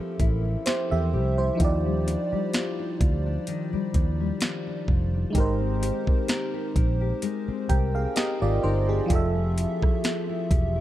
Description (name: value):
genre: contemporary R&B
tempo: 64 BPM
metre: 4/4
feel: swing 54% on 16ths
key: unclear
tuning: A4 = 440 Hz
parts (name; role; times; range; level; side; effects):
- FM electric piano with soft pad layer; accompaniment; 0.0-10.8 s; F3 to G5; -28 LUFS; right 2 dB; chorus
- nylon-string guitar; arpeggios; 0.0-10.8 s; Eb3 to Bb4; -32 LUFS; left 10 dB; tape echo
- vintage muted fingered electric bass; bass; 0.2-10.8 s; E1 to E2; -26 LUFS; equal; none
- trap drum kit; drums; 0.2-10.7 s; hi-hat, kick drum, rim click, snare drum; -24 LUFS; equal; none
room: digital ambience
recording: dark, warm production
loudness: -23 LUFS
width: side -13 dB against mid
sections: 0.0-10.8 A section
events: none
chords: 0.0 Fmaj9; 1.6 Ebmaj9; 5.3 Abmaj9; 9.1 Fmaj9